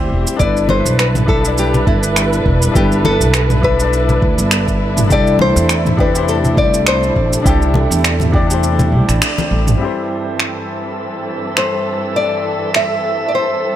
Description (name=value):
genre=sunset chillout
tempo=102 BPM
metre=4/4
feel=swing 55% on 16ths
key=unclear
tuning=A4 = 443 Hz
part: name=bright baby grand piano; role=accompaniment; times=0.0-13.8 s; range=G3 to E5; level=-21 LUFS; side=moving between left 6 dB and right 4 dB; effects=auto-pan, digital delay
part: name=dark studio string section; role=sustained chords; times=0.0-13.8 s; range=G2 to B4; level=-21 LUFS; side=equal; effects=vintage 12-bit sampler grit, low-pass filter
part: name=upright bass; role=bass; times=0.0-9.7 s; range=E1 to E2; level=-16 LUFS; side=equal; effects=none
part: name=deep house drum kit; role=drums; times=0.3-12.9 s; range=finger snaps, shaker, toms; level=-19 LUFS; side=right 2 dB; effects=overdrive
part: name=nylon-string guitar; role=melody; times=0.4-13.8 s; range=E4 to E5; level=-18 LUFS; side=left 2 dB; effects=digital delay
part: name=electronic kick drum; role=drums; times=0.4-8.5 s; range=none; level=-17 LUFS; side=equal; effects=overdrive
part: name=congas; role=percussion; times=0.7-9.5 s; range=none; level=-19 LUFS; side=left 2 dB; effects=none
part: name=drifting glass-harmonics texture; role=texture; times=9.8-13.8 s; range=E5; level=-27 LUFS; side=right 6 dB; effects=chorus, built-in reverb
room=light reverb, studio reverb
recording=none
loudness=-12 LUFS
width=side -11 dB against mid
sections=0.0-9.8 A section; 9.8-13.8 B section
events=kick drops out 8.6-9.8; band accent 9.2; filter sweep on string section 9.8-13.8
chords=0.4 G69; 5.1 C69; 9.8 Am7/G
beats=| 0.40 0.98 1.57 2.16 | 2.75 3.34 3.93 4.51 | 5.10 5.69 6.28 6.87 | 7.46 8.04 8.63 9.22 | 9.81 10.40 10.98 11.57 | 12.16 12.75 13.34